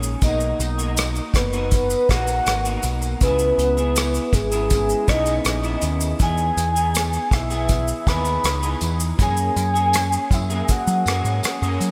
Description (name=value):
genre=indie pop, bedroom pop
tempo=80 BPM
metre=4/4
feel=straight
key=B major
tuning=A4 = 440 Hz
part: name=electric guitar through a small old amp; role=accompaniment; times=0.0-11.9 s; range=B2 to G#4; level=-31 LUFS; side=equal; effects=analog chorus, warbly pitch drift, slapback echo
part: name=deep dub picked electric bass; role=bass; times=0.0-11.9 s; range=F#1 to F#3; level=-26 LUFS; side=equal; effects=none
part: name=unplugged drum kit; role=drums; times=0.0-11.9 s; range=hi-hat, kick drum, rim click, shaker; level=-25 LUFS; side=equal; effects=none
part: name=soft octave-layered synth lead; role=melody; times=0.2-11.4 s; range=G#4 to B5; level=-25 LUFS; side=equal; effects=tremolo, analog chorus, slapback echo, digital delay
part: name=tambourine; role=percussion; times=0.2-11.9 s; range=none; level=-41 LUFS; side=equal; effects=none
room=moderate lush hall reverb, RT60 3.0 s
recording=big arena sound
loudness=-20 LUFS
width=mono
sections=0.0-11.9 A section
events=none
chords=0.2 Bmaj7; 3.2 C#m7; 6.2 Emaj7; 9.2 F#add9